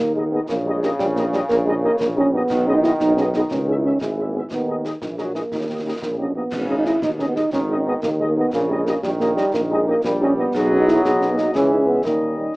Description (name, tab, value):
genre	military-style march for wind band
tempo	119 BPM (dotted quarters)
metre	6/8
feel	straight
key	unclear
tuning	A4 = 440 Hz
part	mellow euphonium	second line	0.0-12.5 s	G3 to E4	-21 LUFS	right 1 dB	none
part	clear trombone section	sustained chords	0.0-12.6 s	A#2 to G3	-26 LUFS	equal	none
part	mellow tuba	bass	0.0-12.5 s	G#1 to D#2	-24 LUFS	equal	none
part	mellow trumpet section	melody	0.2-12.5 s	D#5 to E5	-33 LUFS	left 2 dB	none
part	mellow French horn section	accompaniment	0.2-12.6 s	G3 to G#4	-24 LUFS	equal	none
part	concert snare drum, concert bass drum and clash cymbals	drums	0.5-12.2 s	none	-34 LUFS	equal	none
room	light reverb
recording	small speaker sound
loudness	-17 LUFS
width	side -22 dB against mid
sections	0.0-12.6 A section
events	none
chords	0.5 D#7/A#; 2.5 G#m/B; 3.5 C#m; 4.5 D#sus4; 5.5 D#; 6.5 G#m; 8.5 D#7/A#; 10.5 G#m/B; 11.6 C#m; 12.1 D#7